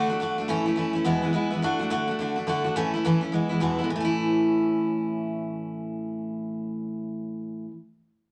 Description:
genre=rock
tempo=211 BPM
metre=4/4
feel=swing 62% on 8ths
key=A major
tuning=A4 = 442 Hz
part: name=picked steel-string acoustic guitar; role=solo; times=0.0-7.8 s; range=E2 to F#4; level=-27 LUFS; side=equal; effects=none
room=moderate club reverb, RT60 0.8 s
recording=none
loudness=-27 LUFS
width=mono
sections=0.0-1.6 A section; 1.6-3.9 B section; 3.9-6.2 C section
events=none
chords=0.5 A; 1.1 E; 1.6 D; 2.8 A; 3.3 E; 3.9 A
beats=0.20 | 0.48 0.77 1.05 1.34 | 1.62 1.91 2.19 2.48 | 2.76 3.04 3.33 3.61 | 3.90 4.18 4.47 4.75 | 5.04 5.32 5.61 5.89

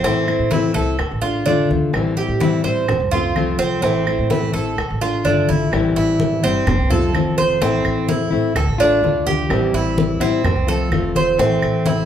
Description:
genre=latin, Cuban son and guajira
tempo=127 BPM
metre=4/4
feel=straight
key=A minor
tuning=A4 = 437 Hz
part: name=nylon-string guitar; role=accompaniment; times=0.0-12.1 s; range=C3 to F4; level=-20 LUFS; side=left 3 dB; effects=none
part: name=Cuban tres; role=arpeggios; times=0.0-12.1 s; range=C4 to C5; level=-20 LUFS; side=right 4 dB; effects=none
part: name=upright bass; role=bass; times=0.0-12.1 s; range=F1 to A2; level=-23 LUFS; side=right 1 dB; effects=none
part: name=bongos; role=percussion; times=0.0-12.1 s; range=none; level=-30 LUFS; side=left 2 dB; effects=none
part: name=congas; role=percussion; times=0.0-12.1 s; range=none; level=-24 LUFS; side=left 2 dB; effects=none
part: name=claves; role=percussion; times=0.3-11.9 s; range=none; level=-28 LUFS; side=right 3 dB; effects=none
room=wet large studio reverb, RT60 0.8 s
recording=band playing live in one room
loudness=-16 LUFS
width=side -9 dB against mid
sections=0.0-5.7 A section; 5.7-12.1 B section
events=none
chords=0.0 Am; 1.0 Dm; 1.9 Am7; 2.9 F; 3.8 Am; 4.8 Dm; 5.7 Am7; 6.7 F; 7.6 Am; 8.6 Dm; 9.5 Am7; 10.4 F; 11.4 Am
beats=| 0.04 0.52 0.99 1.46 | 1.94 2.41 2.88 3.36 | 3.83 4.31 4.78 5.25 | 5.73 6.20 6.67 7.14 | 7.62 8.09 8.56 9.03 | 9.51 9.98 10.45 10.92 | 11.39 11.87

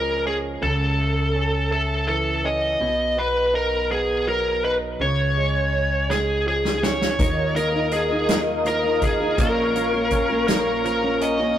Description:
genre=six-eight pop ballad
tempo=55 BPM (dotted quarters)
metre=6/8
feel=straight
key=unclear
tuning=A4 = 440 Hz
part: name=biting lead guitar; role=melody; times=0.0-11.6 s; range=G#4 to D#5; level=-22 LUFS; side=equal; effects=overdrive, tape echo
part: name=direct-recorded clean electric guitar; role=accompaniment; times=0.0-11.6 s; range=A#2 to D#4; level=-29 LUFS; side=right 3 dB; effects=none
part: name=upright bass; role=bass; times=0.0-11.5 s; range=A#1 to D#2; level=-28 LUFS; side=left 1 dB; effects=none
part: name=natural country drum kit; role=drums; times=6.1-11.4 s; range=hi-hat, kick drum, snare drum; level=-24 LUFS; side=equal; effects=none
part: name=warm analog pad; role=sustained chords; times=7.2-11.6 s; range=A#4 to D#6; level=-25 LUFS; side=left 1 dB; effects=chorus
part: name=picked steel-string acoustic guitar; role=arpeggios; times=7.2-11.6 s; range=A#2 to A#4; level=-27 LUFS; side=left 1 dB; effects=none
room=wet studio reverb, RT60 0.7 s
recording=rough rehearsal-room recording, tube saturation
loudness=-19 LUFS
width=side -10 dB against mid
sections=0.0-11.6 A section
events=drum fill 6.1-7.2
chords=0.0 C#; 0.6 A/C#; 2.8 B; 5.0 C#; 7.2 D#sus2; 9.4 A#m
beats=| 0.62 1.72 | 2.81 3.91 | 5.00 6.10 | 7.19 8.29 | 9.38 10.48 | 11.58

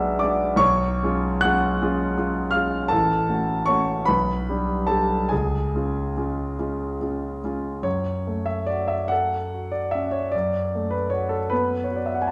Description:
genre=classical, romantic nocturne for solo piano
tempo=47-55 BPM (dotted quarters)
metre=6/8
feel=rubato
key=F# minor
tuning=A4 = 440 Hz
part: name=warm concert grand piano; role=solo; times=0.0-12.3 s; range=A1 to F#6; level=-24 LUFS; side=equal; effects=none
room=wet large studio reverb, RT60 1.4 s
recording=heard from further back in the room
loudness=-24 LUFS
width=mono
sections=0.0-7.8 A section; 7.8-12.3 B section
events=none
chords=0.0 G#m7b5/B; 0.6 C#7/B; 2.9 F#m/A; 4.1 G/B; 5.3 C#; 7.8 F#m; 10.3 B5/F#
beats=| 0.62 1.81 | 2.91 4.08 | 5.31 6.58 | 7.85 9.10 | 10.33 11.51

